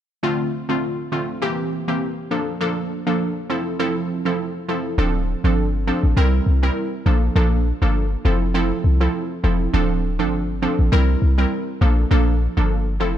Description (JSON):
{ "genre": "afrobeats", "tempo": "101 BPM", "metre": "4/4", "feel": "swing 55% on 16ths", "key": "unclear", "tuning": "A4 = 440 Hz", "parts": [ { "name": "glassy wavetable pluck", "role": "accompaniment", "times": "0.2-13.2 s", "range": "D3 to Bb4", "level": "-21 LUFS", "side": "right 1 dB", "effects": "chorus" }, { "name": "clean 808-style bass", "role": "bass", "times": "5.0-13.2 s", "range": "D1 to C2", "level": "-18 LUFS", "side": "equal", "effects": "none" } ], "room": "digital ambience", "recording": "none", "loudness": "-18 LUFS", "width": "side -11 dB against mid", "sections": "0.2-5.0 A section; 5.0-13.2 B section", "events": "none", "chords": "0.2 Dm7; 1.4 C7; 2.3 Bbmaj7; 3.5 Fmaj7; 5.0 Dm7; 6.2 C7; 7.1 Bbmaj7; 8.2 Fmaj7; 9.7 Dm7; 10.9 C7; 11.8 Bbmaj7" }